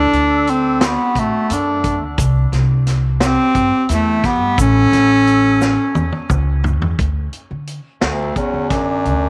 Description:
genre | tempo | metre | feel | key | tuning
progressive instrumental, band music in an uneven meter | 175 BPM (eighths) | 7/8 | straight | unclear | A4 = 438 Hz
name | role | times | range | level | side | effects
bright bass clarinet | melody | 0.0-9.3 s | D2 to D4 | -18 LUFS | equal | tape echo
breathy alto saxophone | second line | 0.0-9.3 s | A3 to A4 | -28 LUFS | equal | none
upright bass | bass | 0.0-9.3 s | A1 to D3 | -21 LUFS | equal | none
vintage drum kit | drums | 0.1-9.2 s | hi-hat, kick drum, snare drum, toms | -24 LUFS | equal | none
egg shaker | percussion | 0.8-6.8 s | none | -35 LUFS | equal | none
room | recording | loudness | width
moderate spring reverb, RT60 2.9 s | none | -16 LUFS | mono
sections
0.0-7.0 A section; 7.0-9.3 B section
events
drum fill 5.6-7.0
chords
0.0 D; 2.2 C; 4.6 A; 7.0 D

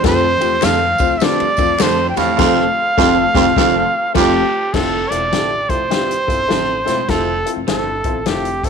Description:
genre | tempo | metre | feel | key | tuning
uptempo 1960s-style soul | 102 BPM | 4/4 | swing 63% on 8ths | F major | A4 = 440 Hz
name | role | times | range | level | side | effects
warm trumpet | melody | 0.0-8.7 s | G4 to G5 | -17 LUFS | right 2 dB | none
clear concert grand piano | accompaniment | 0.0-8.7 s | F3 to C5 | -21 LUFS | left 11 dB | none
breathy baritone saxophone | riff | 0.0-7.4 s | F2 to A2 | -21 LUFS | right 12 dB | none
upright bass | bass | 0.0-8.7 s | E1 to F2 | -25 LUFS | right 1 dB | none
vintage drum kit | drums | 0.0-8.7 s | crash cymbal, hi-hat, kick drum, ride cymbal, snare drum | -21 LUFS | left 3 dB | none
tambourine and handclaps | percussion | 0.0-2.3 s | none | -29 LUFS | left 2 dB | none
electric guitar through a small old amp | stabs | 0.6-7.8 s | F3 to A4 | -24 LUFS | right 12 dB | vibrato effect
room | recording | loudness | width
moderate echo chamber reverb, RT60 1.8 s, studio reverb | 1960s-style stereo with parts hard left and right | -13 LUFS | side -6 dB against mid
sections
0.0-4.7 A section; 4.7-8.7 B section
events
band accent 2.4-4.7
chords
0.0 F; 4.7 Fmaj7

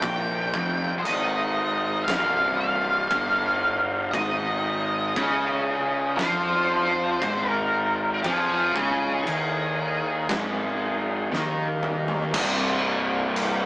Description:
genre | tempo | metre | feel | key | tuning
stoner and doom metal | 58 BPM | 4/4 | straight | unclear | A4 = 440 Hz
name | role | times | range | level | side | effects
octave-fuzz lead guitar | melody | 0.0-11.3 s | Ab4 to G5 | -26 LUFS | equal | distortion
fuzz guitar | riff | 0.0-13.7 s | C2 to F3 | -27 LUFS | equal | distortion
fuzz fingered electric bass | bass | 0.0-13.7 s | C1 to F2 | -29 LUFS | equal | overdrive
oversized low-tuned drum kit | drums | 0.0-13.6 s | crash cymbal, kick drum, snare drum, toms | -29 LUFS | equal | none
room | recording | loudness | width
light reverb | rough rehearsal-room recording, small speaker sound | -22 LUFS | side -24 dB against mid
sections
0.0-12.3 A section; 12.3-13.7 B section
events
drum fill 11.3-12.3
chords
0.0 Cm; 4.1 Ab5; 12.3 N.C.

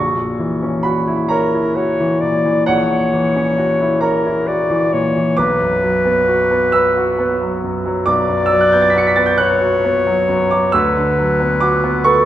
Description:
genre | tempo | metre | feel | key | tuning
classical, romantic duo for clarinet and grand piano | 45 BPM (dotted quarters) | 12/8 | rubato | B minor | A4 = 440 Hz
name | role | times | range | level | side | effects
clear clarinet | melody | 0.0-12.3 s | F#4 to D5 | -17 LUFS | left 2 dB | none
bright grand piano | accompaniment | 0.0-12.3 s | A#1 to C#7 | -16 LUFS | right 1 dB | none
room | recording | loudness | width
wet recital hall reverb, RT60 1.6 s | none | -13 LUFS | side -12 dB against mid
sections
0.0-12.3 A section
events
none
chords
0.0 F#7/A#; 5.4 Bm; 10.7 Bm/D

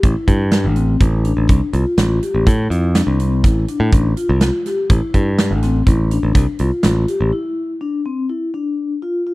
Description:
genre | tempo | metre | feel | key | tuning
progressive instrumental, band music in an uneven meter | 124 BPM | 5/4 | straight | unclear | A4 = 440 Hz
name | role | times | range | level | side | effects
vibraphone with soft mallets | arpeggios | 0.0-9.3 s | C4 to G4 | -20 LUFS | left 3 dB | none
modern bright picked electric bass | bass | 0.0-7.3 s | A1 to A2 | -16 LUFS | equal | none
big rock drum kit | drums | 0.0-7.2 s | hi-hat, kick drum, snare drum | -16 LUFS | equal | none
room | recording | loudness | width
little or no reverb | dry, close 1970s-style studio recording | -14 LUFS | side -20 dB against mid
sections
0.0-9.3 A section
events
break 7.3-9.3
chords
0.0 Dm7/A

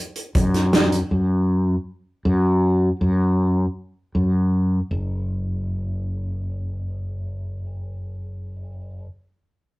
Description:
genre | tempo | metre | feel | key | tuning
progressive instrumental, band music in an uneven meter | free time | none | none | unclear | A4 = 440 Hz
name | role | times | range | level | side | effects
unplugged drum kit | drums | 0.2-1.0 s | hi-hat, kick drum, snare drum | -20 LUFS | equal | none
fretless electric bass | bass | 0.4-9.1 s | F#1 to F#2 | -20 LUFS | equal | none
room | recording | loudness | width
moderate studio reverb, RT60 0.6 s | rough rehearsal-room recording, tube saturation | -20 LUFS | side -21 dB against mid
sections
0.0-4.9 A section; 4.9-8.7 B section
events
none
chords
none

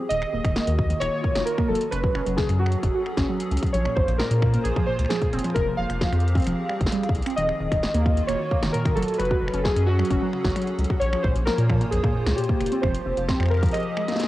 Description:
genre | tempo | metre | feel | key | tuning
IDM | 132 BPM | 4/4 | straight | Eb dorian | A4 = 440 Hz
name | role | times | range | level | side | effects
hollow soft pad | sustained chords | 0.0-14.3 s | Eb3 to Db5 | -34 LUFS | left 2 dB | ensemble chorus, vintage 12-bit sampler grit, cassette tape, shimmer reverb
warbly dusty pluck | arpeggios | 0.0-14.2 s | F2 to Gb4 | -28 LUFS | right 1 dB | phaser, analog chorus, vintage 12-bit sampler grit, cassette tape, tape echo, shimmer reverb
warbly lo-fi synth keys | melody | 0.1-14.3 s | Gb4 to F5 | -26 LUFS | equal | chorus, cassette tape, tape echo, shimmer reverb
round analog bass | bass | 0.1-13.7 s | Eb1 to Bb2 | -24 LUFS | equal | tube saturation
electro analog drum machine | drums | 0.1-14.3 s | finger snaps, hi-hat, snare drum | -32 LUFS | equal | cassette tape
electronic kick drum | drums | 0.4-13.7 s | none | -26 LUFS | equal | cassette tape
room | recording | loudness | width
moderate spring reverb, RT60 1.6 s, digital ambience | home recording on cassette | -21 LUFS | side -16 dB against mid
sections
0.1-14.3 A section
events
break 13.7-14.3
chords
0.1 Ebm11; 1.7 Gbmadd9; 3.7 Bbm9; 5.3 Fmadd9; 7.4 Ebm11; 9.0 Gbmadd9; 11.0 Bbm9; 12.6 Fm11

